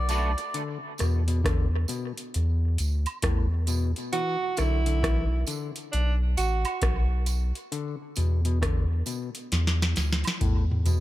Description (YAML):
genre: dub reggae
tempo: 67 BPM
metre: 4/4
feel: swing 64% on 16ths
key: unclear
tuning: A4 = 440 Hz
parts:
  - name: melodica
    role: melody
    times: 0.0-0.6 s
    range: D5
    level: -34 LUFS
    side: left 3 dB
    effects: tape echo
  - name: soft dub sub bass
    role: bass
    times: 0.0-11.0 s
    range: A1 to E2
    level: -24 LUFS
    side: equal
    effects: none
  - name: booming analog drum machine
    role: drums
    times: 0.1-11.0 s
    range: hi-hat, kick drum, rim click, snare drum, toms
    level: -29 LUFS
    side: equal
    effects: none
  - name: tambourine and woodblock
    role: percussion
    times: 0.1-11.0 s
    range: none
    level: -39 LUFS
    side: right 8 dB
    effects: tape echo
  - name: overdriven clav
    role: arpeggios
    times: 0.5-11.0 s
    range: A2 to E3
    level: -35 LUFS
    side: left 6 dB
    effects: tape echo
  - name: clear tenor saxophone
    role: second line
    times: 4.1-6.7 s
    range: D4 to F#4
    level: -31 LUFS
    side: right 4 dB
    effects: tape echo
room: little or no reverb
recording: none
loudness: -24 LUFS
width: side -15 dB against mid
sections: 0.0-11.0 A section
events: drum fill 9.5-11.0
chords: 0.0 Bm7; 0.5 E5; 4.1 Bm; 7.7 E5